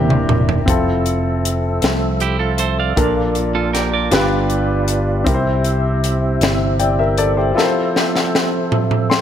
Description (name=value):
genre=slow gospel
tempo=52 BPM (dotted quarters)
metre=6/8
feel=straight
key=F major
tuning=A4 = 441 Hz
part: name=warm concert grand piano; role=accompaniment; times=0.0-9.2 s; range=G2 to C6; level=-19 LUFS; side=left 2 dB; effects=none
part: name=percussive tonewheel organ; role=sustained chords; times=0.0-9.2 s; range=F3 to E5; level=-22 LUFS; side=right 2 dB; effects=slow rotary speaker, chorus vibrato
part: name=fingered electric bass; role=bass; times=0.0-7.5 s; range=Eb1 to C2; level=-20 LUFS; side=equal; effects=none
part: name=crisp fusion drum kit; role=drums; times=0.1-9.2 s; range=hi-hat, kick drum, snare drum, toms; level=-19 LUFS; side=equal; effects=none
part: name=clean electric guitar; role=second line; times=2.2-4.3 s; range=E4 to F5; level=-22 LUFS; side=right 9 dB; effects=warbly pitch drift
room=light reverb, small room reverb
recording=none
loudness=-14 LUFS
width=side -9 dB against mid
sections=0.7-9.2 A section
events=drum fill 0.0-0.7, 7.6-9.2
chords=0.0 C7; 0.7 Fmaj7; 3.0 Bbmaj7; 4.1 G7; 5.3 C; 7.6 Fmaj7